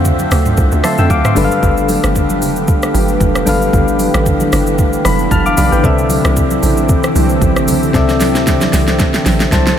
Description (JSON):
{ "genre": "amapiano", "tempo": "114 BPM", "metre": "4/4", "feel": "swing 55% on 16ths", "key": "unclear", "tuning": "A4 = 440 Hz", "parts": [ { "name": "soft electric-piano-like synth keys", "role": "accompaniment", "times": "0.0-9.8 s", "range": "C3 to F6", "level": "-16 LUFS", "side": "left 4 dB", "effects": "chorus" }, { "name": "lush unison pad", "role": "sustained chords", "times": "0.0-9.8 s", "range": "D3 to E5", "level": "-17 LUFS", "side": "right 1 dB", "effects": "chorus" }, { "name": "tight log drum bass", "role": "bass", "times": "0.0-9.7 s", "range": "F1 to F2", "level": "-16 LUFS", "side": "equal", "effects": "none" }, { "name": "smooth R&B drum kit", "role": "drums", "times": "0.0-9.8 s", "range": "hi-hat, kick drum, rim click, shaker, snare drum, toms", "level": "-16 LUFS", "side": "equal", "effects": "none" }, { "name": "congas", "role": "percussion", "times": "0.1-9.7 s", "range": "none", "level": "-23 LUFS", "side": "right 4 dB", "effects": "none" } ], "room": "light reverb", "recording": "none", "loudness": "-10 LUFS", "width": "side -9 dB against mid", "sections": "0.0-9.8 A section", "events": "synth keys fill 0.6-1.6, 4.8-5.8; drum fill 7.9-9.8", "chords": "0.0 Dm9; 1.4 G9; 5.8 C69" }